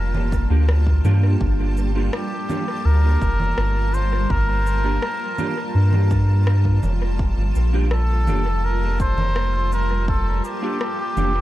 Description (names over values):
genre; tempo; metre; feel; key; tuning
ambient dub; 83 BPM; 4/4; straight; G minor; A4 = 443 Hz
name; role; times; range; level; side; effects
trumpet with cup mute; melody; 0.0-11.4 s; G4 to C5; -27 LUFS; equal; vintage 12-bit sampler grit, dub echo
granular cloud pad; sustained chords; 0.0-11.4 s; G3 to A5; -29 LUFS; equal; built-in reverb
soft dub sub bass; bass; 0.0-11.4 s; F1 to G2; -18 LUFS; equal; none
electronic congas, cabasa and rim click; drums; 0.1-11.3 s; none; -31 LUFS; equal; overdrive, studio reverb, dub echo
electronic kick drum; drums; 0.3-10.2 s; none; -24 LUFS; equal; overdrive, studio reverb
mellow electric guitar; stabs; 0.5-11.3 s; Bb3 to G4; -30 LUFS; right 2 dB; ensemble chorus, dub echo
room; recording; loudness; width
little or no reverb; echo-heavy mix; -18 LUFS; side -15 dB against mid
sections
0.0-11.4 A section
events
none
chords
0.0 Gm7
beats
0.69 | 1.41 2.13 2.85 3.58 | 4.30 5.02 5.75 6.47 | 7.19 7.91 8.64 9.36 | 10.08 10.81